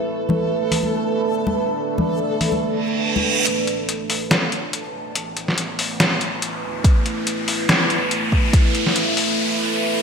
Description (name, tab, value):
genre	deep dubstep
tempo	142 BPM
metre	4/4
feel	swing 56% on 16ths, half-time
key	unclear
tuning	A4 = 443 Hz
part	deep dark ambient pad	sustained chords	0.0-10.0 s	A3 to B4	-23 LUFS	right 2 dB	chorus, built-in reverb
part	backwards swelling texture	texture	0.0-3.5 s	A4	-28 LUFS	left 2 dB	built-in reverb, wide subtle chorus
part	congas	percussion	0.3-3.2 s	none	-24 LUFS	left 3 dB	none
part	trip hop sampler-style drum kit	drums	0.7-9.3 s	hi-hat, snare drum	-20 LUFS	left 1 dB	gated reverb
part	reverse cymbal and riser	sound effects	2.8-10.0 s	none	-24 LUFS	right 1 dB	none
part	soft dub sub bass	bass	3.5-9.4 s	E1 to D2	-41 LUFS	equal	none
part	electronic kick drum	drums	6.8-8.6 s	none	-15 LUFS	equal	overdrive
room	wet lush hall reverb, RT60 2.0 s, digital ambience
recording	bright 1980s-style digital production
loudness	-18 LUFS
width	side -6 dB against mid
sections	0.0-3.5 A section; 3.5-10.0 B section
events	reverse cymbal 2.8-3.5; build-up 3.5-10.0; riser 3.5-10.0; filter sweep on ambient pad 3.5-10.0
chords	0.0 A5